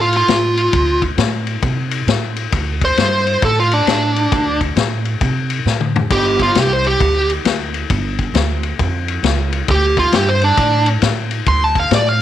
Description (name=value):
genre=electric blues shuffle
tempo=134 BPM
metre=4/4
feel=swing 64% on 8ths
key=D minor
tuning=A4 = 439 Hz
part: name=smooth overdriven lead guitar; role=melody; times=0.0-12.2 s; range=D4 to C6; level=-15 LUFS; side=right 1 dB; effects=none
part: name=upright bass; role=bass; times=0.0-12.2 s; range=G1 to C3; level=-19 LUFS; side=right 1 dB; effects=none
part: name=vintage drum kit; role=drums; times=0.1-12.0 s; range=crash cymbal, kick drum, ride cymbal, snare drum, toms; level=-19 LUFS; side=left 5 dB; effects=none
room=light reverb, small room ambience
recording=1960s-style stereo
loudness=-14 LUFS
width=side -11 dB against mid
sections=0.0-12.2 A section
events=lead electric guitar solo 0.0-12.2; drum fill 5.7-6.1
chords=0.0 D5; 6.1 G5; 9.7 D5